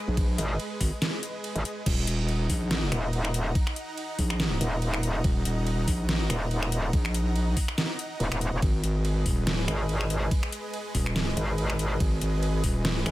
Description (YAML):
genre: heavy wobble dubstep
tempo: 142 BPM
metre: 4/4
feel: swing 55% on 16ths, half-time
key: Eb minor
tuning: A4 = 444 Hz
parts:
  - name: supersaw pad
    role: sustained chords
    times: 0.0-13.1 s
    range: Ab3 to Bb5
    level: -36 LUFS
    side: right 1 dB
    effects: sidechain pumping
  - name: wobble bass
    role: bass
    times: 0.1-13.0 s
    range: Eb1 to Bb1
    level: -27 LUFS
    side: equal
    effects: chorus, overdrive
  - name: dubstep drum kit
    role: drums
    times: 0.2-13.1 s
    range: crash cymbal, finger snaps, hi-hat, ride cymbal, snare drum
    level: -32 LUFS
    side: equal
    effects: overdrive
  - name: electronic kick drum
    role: drums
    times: 0.2-12.7 s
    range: none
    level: -27 LUFS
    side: equal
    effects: overdrive
  - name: metallic wobble bass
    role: bass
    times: 0.4-13.1 s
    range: Eb1 to Ab1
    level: -26 LUFS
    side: equal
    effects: chorus, overdrive
room: little or no reverb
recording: none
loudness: -25 LUFS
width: side -16 dB against mid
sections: 0.0-1.9 A section; 1.9-13.1 A section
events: drop 0.0-1.9, 1.9-13.1; break 1.0-1.9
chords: 0.0 Abm; 1.9 Ebm; 8.6 Abm